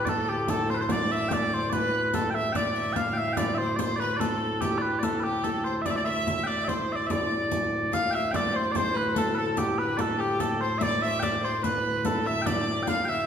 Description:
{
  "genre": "medieval dance",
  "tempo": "145 BPM",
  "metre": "3/4",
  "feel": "straight",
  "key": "D dorian",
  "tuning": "A4 = 439 Hz",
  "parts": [
    { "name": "mellow small bagpipes", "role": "melody", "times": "0.0-13.3 s", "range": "G4 to G5", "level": "-28 LUFS", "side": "right 1 dB", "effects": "none" },
    { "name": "clear fiddle", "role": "second line", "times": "0.0-13.3 s", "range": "G4 to F5", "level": "-32 LUFS", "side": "left 3 dB", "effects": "none" },
    { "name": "pedal harmonium", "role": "drone", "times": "0.0-13.3 s", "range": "D2 to A2", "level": "-32 LUFS", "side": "left 1 dB", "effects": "none" },
    { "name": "frame drum", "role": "percussion", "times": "0.1-13.2 s", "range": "none", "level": "-34 LUFS", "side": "right 2 dB", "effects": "none" },
    { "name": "riq", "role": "percussion", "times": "0.1-13.1 s", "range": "none", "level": "-35 LUFS", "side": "left 4 dB", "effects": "none" }
  ],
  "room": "wet recital hall reverb, RT60 1.4 s",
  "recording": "recorded in a church or concert hall",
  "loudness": "-24 LUFS",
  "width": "side -8 dB against mid",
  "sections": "0.0-7.9 A section; 7.9-13.3 A section",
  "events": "none",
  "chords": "none"
}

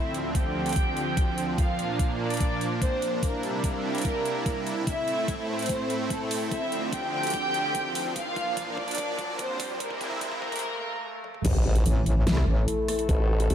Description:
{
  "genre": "heavy wobble dubstep",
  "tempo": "146 BPM",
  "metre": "4/4",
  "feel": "half-time",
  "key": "A phrygian",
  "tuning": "A4 = 439 Hz",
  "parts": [
    { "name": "rich studio violin section", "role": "melody", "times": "0.0-11.4 s", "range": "A3 to G5", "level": "-30 LUFS", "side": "equal", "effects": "low-pass filter, analog delay" },
    { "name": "supersaw pad", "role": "sustained chords", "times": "0.0-13.5 s", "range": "D2 to E4", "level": "-31 LUFS", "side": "right 1 dB", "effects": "sidechain pumping, low-pass filter" },
    { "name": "dubstep drum kit", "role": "drums", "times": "0.1-13.5 s", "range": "crash cymbal, hi-hat, rim click, snare drum, toms", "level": "-34 LUFS", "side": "equal", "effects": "overdrive" },
    { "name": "electronic kick drum", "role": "drums", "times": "0.3-13.2 s", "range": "none", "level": "-28 LUFS", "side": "equal", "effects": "overdrive" },
    { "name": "riser, swell and impact", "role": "sound effects", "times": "6.7-13.1 s", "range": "none", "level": "-33 LUFS", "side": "equal", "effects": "none" },
    { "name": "formant-sweep wobble bass", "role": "bass", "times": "11.4-13.5 s", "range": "A1 to C2", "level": "-23 LUFS", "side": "equal", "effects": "chorus, overdrive" },
    { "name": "metallic wobble bass", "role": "bass", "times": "11.9-12.7 s", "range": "A1 to C2", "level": "-23 LUFS", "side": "equal", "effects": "chorus, overdrive" },
    { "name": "dark brass ensemble", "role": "stabs", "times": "12.5-13.5 s", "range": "A3 to A4", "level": "-29 LUFS", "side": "left 2 dB", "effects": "analog delay" }
  ],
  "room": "moderate lush hall reverb, RT60 1.8 s, digital ambience",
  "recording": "dreamy mix soaked in reverb, high-pass filter",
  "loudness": "-25 LUFS",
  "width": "side -9 dB against mid",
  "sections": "0.0-11.4 A section; 11.4-13.5 B section",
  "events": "build-up 0.0-11.4; filter sweep 0.0-11.4; drum fill 4.9-10.6, 11.2; riser 6.7-10.6; swell 10.6-11.4; drop 11.4-13.5; impact 11.4-13.1",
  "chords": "0.0 Dm7; 1.6 Bb; 3.2 Cadd9; 4.9 Am; 6.5 Dm7; 8.2 Bb; 9.8 Cadd9; 11.4 A5"
}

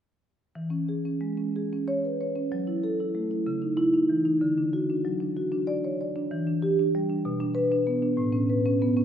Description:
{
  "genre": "classical, contemporary piece for solo marimba",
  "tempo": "63 BPM (dotted quarters)",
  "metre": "6/8",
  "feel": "rubato",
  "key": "unclear",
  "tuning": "A4 = 440 Hz",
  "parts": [
    { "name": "marimba with medium mallets", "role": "solo", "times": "0.6-9.0 s", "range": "A2 to D5", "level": "-24 LUFS", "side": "equal", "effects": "none" }
  ],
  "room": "wet recital hall reverb, RT60 1.5 s",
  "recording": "heard from further back in the room",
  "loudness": "-24 LUFS",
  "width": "side -9 dB against mid",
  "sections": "0.6-9.0 A section",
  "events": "none",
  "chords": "0.6 E6; 2.5 F#m7; 3.5 C#madd9; 4.4 D; 6.3 Em7; 7.3 Bm; 8.2 Aadd9"
}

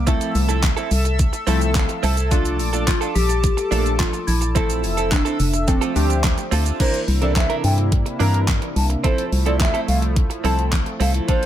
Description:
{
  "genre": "dance-pop",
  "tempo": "107 BPM",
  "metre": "4/4",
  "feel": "straight",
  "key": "unclear",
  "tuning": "A4 = 441 Hz",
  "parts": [
    { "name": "soft struck synth lead", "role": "melody", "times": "0.0-6.5 s", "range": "A3 to G4", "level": "-26 LUFS", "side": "left 2 dB", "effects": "chorus, ping-pong delay" },
    { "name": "chorused pulse-width pad", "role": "sustained chords", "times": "0.0-11.5 s", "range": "C3 to E6", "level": "-28 LUFS", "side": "equal", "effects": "sidechain pumping" },
    { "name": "organ-like FM bass", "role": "bass", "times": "0.0-11.2 s", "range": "F1 to G2", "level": "-20 LUFS", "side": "equal", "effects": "sidechain pumping" },
    { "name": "chorused retro synth keys", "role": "accompaniment", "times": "0.1-11.5 s", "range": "E3 to A5", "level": "-27 LUFS", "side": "left 1 dB", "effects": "tremolo, sidechain pumping" },
    { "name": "direct-recorded clean electric guitar", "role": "riff", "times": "0.1-11.5 s", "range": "C4 to Bb4", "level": "-28 LUFS", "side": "right 10 dB", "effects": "lush chorus" },
    { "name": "pop drum kit", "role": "drums", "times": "0.1-11.5 s", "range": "crash cymbal, handclaps, hi-hat, kick drum, shaker, snare drum", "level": "-21 LUFS", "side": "equal", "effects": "overdrive" },
    { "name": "breathy mellow concert flute", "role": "melody", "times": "6.8-11.5 s", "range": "C5 to Bb5", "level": "-26 LUFS", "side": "equal", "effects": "ping-pong delay" }
  ],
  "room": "digital ambience",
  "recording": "none",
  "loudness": "-17 LUFS",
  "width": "side -11 dB against mid",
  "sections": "0.0-6.8 A section; 6.8-11.5 B section",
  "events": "synth keys fill 1.2-2.3",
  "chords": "0.1 Fmaj7/C; 2.3 Bbmaj7; 4.6 Fmaj7; 5.7 Dm7; 6.8 C9; 9.0 Fmaj7/C"
}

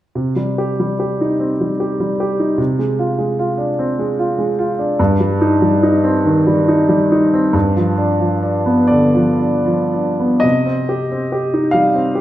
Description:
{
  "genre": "classical, romantic nocturne for solo piano",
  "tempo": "36-52 BPM (dotted quarters)",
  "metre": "12/8",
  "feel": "rubato",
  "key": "C minor",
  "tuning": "A4 = 441 Hz",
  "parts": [
    { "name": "warm grand piano", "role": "solo", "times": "0.2-12.2 s", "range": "G2 to F5", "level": "-14 LUFS", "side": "equal", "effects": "none" }
  ],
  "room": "wet recital hall reverb, RT60 1.3 s",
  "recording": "none",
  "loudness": "-14 LUFS",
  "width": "side -13 dB against mid",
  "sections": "0.2-10.4 A section; 10.4-12.2 B section",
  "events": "none",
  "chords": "0.2 Cm; 2.6 Dm7b5/C; 5.0 Cm/G; 7.5 G7; 10.4 Cm"
}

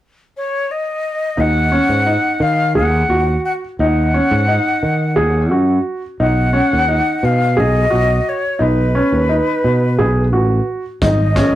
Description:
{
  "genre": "progressive instrumental, band music in an uneven meter",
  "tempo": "174 BPM (eighths)",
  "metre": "7/8",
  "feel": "straight",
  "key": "Eb minor",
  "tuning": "A4 = 440 Hz",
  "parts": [
    { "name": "breathy bright silver concert flute", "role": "melody", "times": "0.4-11.6 s", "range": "B4 to Gb5", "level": "-19 LUFS", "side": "left 1 dB", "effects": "none" },
    { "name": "warm baby grand piano", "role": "arpeggios", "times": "1.4-11.6 s", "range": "Db4 to Ab4", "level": "-18 LUFS", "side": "equal", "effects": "none" },
    { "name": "sustaining fretless electric bass", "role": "bass", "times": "1.4-11.6 s", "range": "Ab1 to Eb3", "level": "-16 LUFS", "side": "equal", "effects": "none" },
    { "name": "vintage drum kit", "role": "drums", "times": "11.0-11.5 s", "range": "hi-hat, kick drum, snare drum", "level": "-18 LUFS", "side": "equal", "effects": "none" }
  ],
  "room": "moderate studio reverb, RT60 0.6 s",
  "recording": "rough rehearsal-room recording, warm saturation",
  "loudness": "-13 LUFS",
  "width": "side -13 dB against mid",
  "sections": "0.0-1.4 A section; 1.4-11.6 B section",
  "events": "none",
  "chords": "0.0 N.C.; 1.4 Ebm; 6.2 B5; 11.0 Ab5"
}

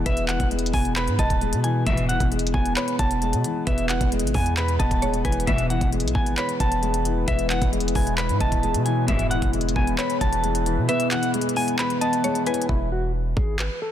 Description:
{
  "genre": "hip hop, trap",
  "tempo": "133 BPM",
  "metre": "4/4",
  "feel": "half-time",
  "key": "E major",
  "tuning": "A4 = 441 Hz",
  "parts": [
    { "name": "clean electric guitar", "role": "melody", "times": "0.0-13.9 s", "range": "E4 to B5", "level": "-27 LUFS", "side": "equal", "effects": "tremolo, low-pass filter" },
    { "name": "mallet-like synth pluck", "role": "second line", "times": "0.0-12.7 s", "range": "B4 to D#5", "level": "-33 LUFS", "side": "equal", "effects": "chorus, tape echo" },
    { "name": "dark grand piano", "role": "accompaniment", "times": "0.0-12.7 s", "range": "B2 to B4", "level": "-26 LUFS", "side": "left 2 dB", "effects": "none" },
    { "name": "hard-hitting 808-style bass", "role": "bass", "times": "0.0-13.7 s", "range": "D#1 to B2", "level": "-26 LUFS", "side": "equal", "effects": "none" },
    { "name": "trap drum kit", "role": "drums", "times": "0.1-13.7 s", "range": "handclaps, hi-hat, kick drum", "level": "-26 LUFS", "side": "equal", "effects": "none" },
    { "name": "dark chamber string section", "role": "stabs", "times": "1.9-2.3, 5.5-5.9, 9.1-9.5 s", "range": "G#2 to E3", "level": "-29 LUFS", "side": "left 2 dB", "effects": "none" },
    { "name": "deep dark ambient pad", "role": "sustained chords", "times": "6.0-12.7 s", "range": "E3 to C#5", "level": "-31 LUFS", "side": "equal", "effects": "chorus, built-in reverb" }
  ],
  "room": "light reverb, digital ambience",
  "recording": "dense, heavily limited modern master",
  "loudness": "-20 LUFS",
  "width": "side -10 dB against mid",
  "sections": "0.0-12.7 A section; 12.7-13.9 B section",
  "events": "kick muted 10.9-12.7; break 12.7-13.9",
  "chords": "0.0 E"
}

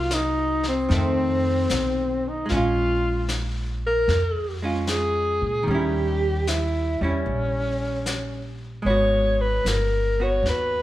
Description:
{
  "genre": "jazz ballad",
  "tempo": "75 BPM",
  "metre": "4/4",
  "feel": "swing 69% on 8ths",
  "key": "unclear",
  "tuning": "A4 = 440 Hz",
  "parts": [
    { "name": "breathy alto saxophone", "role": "melody", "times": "0.0-10.8 s", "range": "C4 to Db5", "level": "-23 LUFS", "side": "left 1 dB", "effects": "none" },
    { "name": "archtop guitar, miked and amplified", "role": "accompaniment", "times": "0.0-10.8 s", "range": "Eb3 to Gb4", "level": "-29 LUFS", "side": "right 2 dB", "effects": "none" },
    { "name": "upright bass", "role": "bass", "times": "0.0-10.8 s", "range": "G1 to Bb2", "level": "-26 LUFS", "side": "equal", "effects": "none" },
    { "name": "vintage brush drum kit", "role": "drums", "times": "0.1-10.8 s", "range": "brushed snare drum, hi-hat, snare drum", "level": "-32 LUFS", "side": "left 2 dB", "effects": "none" }
  ],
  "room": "moderate recital hall reverb, RT60 1.5 s",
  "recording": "recorded in a church or concert hall",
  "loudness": "-21 LUFS",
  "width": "side -14 dB against mid",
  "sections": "0.0-10.8 A section",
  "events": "none",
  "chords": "0.0 Cm7b5; 0.9 F7; 2.5 Bbm7; 5.7 Eb7b9; 8.9 Abm7"
}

